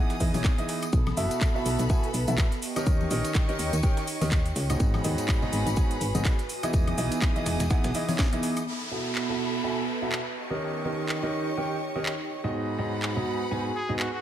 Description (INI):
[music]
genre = piano house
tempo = 124 BPM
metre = 4/4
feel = swing 57% on 16ths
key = B mixolydian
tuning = A4 = 440 Hz
[part]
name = bright studio violin section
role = sustained chords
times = 0.0-14.2 s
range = G4 to D#6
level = -37 LUFS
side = left 1 dB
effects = sidechain pumping
[part]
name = clear grand piano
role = riff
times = 0.0-14.0 s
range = G#2 to G#5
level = -30 LUFS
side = right 1 dB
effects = sidechain pumping, low-pass filter, dub echo
[part]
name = warbly tape-like pad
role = texture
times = 0.0-14.2 s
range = B3 to D#6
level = -35 LUFS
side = right 3 dB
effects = chorus, built-in reverb, sidechain pumping
[part]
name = breakbeat sampler-style drum kit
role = drums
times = 0.1-8.6 s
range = hi-hat, shaker, snare drum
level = -41 LUFS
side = left 1 dB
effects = none
[part]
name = house drum kit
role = drums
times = 0.1-14.1 s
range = cabasa, handclaps, hi-hat, snare drum, woodblock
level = -34 LUFS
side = equal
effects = none
[part]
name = tambourine and congas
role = percussion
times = 0.1-8.6 s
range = none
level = -37 LUFS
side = left 5 dB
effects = none
[part]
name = solid FM bass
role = bass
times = 0.2-7.9 s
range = E1 to E2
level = -28 LUFS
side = equal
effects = sidechain pumping
[part]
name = electronic kick drum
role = drums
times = 0.2-8.3 s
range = none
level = -24 LUFS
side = equal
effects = none
[part]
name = downlifter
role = sound effects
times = 8.7-12.5 s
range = none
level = -38 LUFS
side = equal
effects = none
[part]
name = clear trumpet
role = melody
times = 13.8-14.2 s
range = F#4 to G#4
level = -32 LUFS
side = equal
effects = none
[sound]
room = light reverb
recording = none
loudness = -24 LUFS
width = side -11 dB against mid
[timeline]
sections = 0.0-8.7 A section; 8.7-14.2 B section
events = drum fill 8.2-8.7; band accent 8.6; filter sweep on grand piano 8.7-14.2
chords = 0.0 Emaj7; 0.9 B7sus4; 2.6 D#7; 4.8 G#m7; 6.5 Emaj7; 8.7 B7sus4; 10.4 D#7; 12.5 G#m7